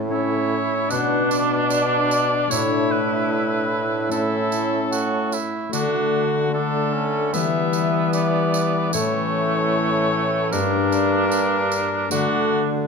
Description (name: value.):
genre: classical, renaissance-style consort dance.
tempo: 75 BPM.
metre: 4/4.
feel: straight.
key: unclear.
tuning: A4 = 440 Hz.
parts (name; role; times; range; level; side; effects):
concert harp; accompaniment; 0.0-12.9 s; G2 to G4; -25 LUFS; left 8 dB; none.
clear bassoon; bass; 0.0-12.9 s; G2 to E3; -25 LUFS; right 3 dB; none.
clear oboe; melody; 0.1-12.6 s; F#4 to F#5; -25 LUFS; left 4 dB; none.
warm cor anglais; second line; 0.1-12.7 s; A3 to F#4; -26 LUFS; right 7 dB; none.
warm trombone; accompaniment; 0.1-12.7 s; E3 to D4; -28 LUFS; left 1 dB; none.
tambourine; percussion; 0.9-12.5 s; none; -31 LUFS; right 7 dB; none.
room: wet recital hall reverb, RT60 1.7 s.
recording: dark, warm production.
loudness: -18 LUFS.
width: side -5 dB against mid.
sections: 0.0-12.9 A section.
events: none.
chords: 0.0 A; 0.9 Bm; 2.5 Asus4; 4.1 A; 5.7 D; 7.3 Em; 8.9 A; 10.5 Gm; 12.1 D.